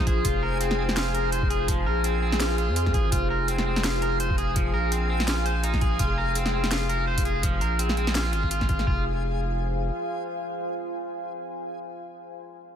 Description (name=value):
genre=half-time drum and bass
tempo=167 BPM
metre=4/4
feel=swing 57% on 16ths, half-time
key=F minor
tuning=A4 = 436 Hz
part: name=deep dark ambient pad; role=sustained chords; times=0.0-12.1 s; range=F4 to Ab5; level=-30 LUFS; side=left 1 dB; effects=chorus, built-in reverb, sidechain pumping
part: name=electric guitar at the edge of break-up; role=arpeggios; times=0.0-9.0 s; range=F3 to C5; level=-30 LUFS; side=right 1 dB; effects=tape echo
part: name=saturated sub bass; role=bass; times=0.0-9.9 s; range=F1 to F2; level=-27 LUFS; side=equal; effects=none
part: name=backwards swelling texture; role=texture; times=0.5-8.9 s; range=Ab4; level=-37 LUFS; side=equal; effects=built-in reverb
part: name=drum and bass drum kit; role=drums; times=0.1-8.9 s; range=hi-hat, snare drum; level=-30 LUFS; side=equal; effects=overdrive
part: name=electronic kick drum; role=drums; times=0.1-9.0 s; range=none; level=-26 LUFS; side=equal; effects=none
room=light reverb, digital ambience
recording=none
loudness=-23 LUFS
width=side -9 dB against mid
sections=0.0-8.9 A section; 8.9-11.7 B section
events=drop 0.0-8.9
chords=0.0 Fm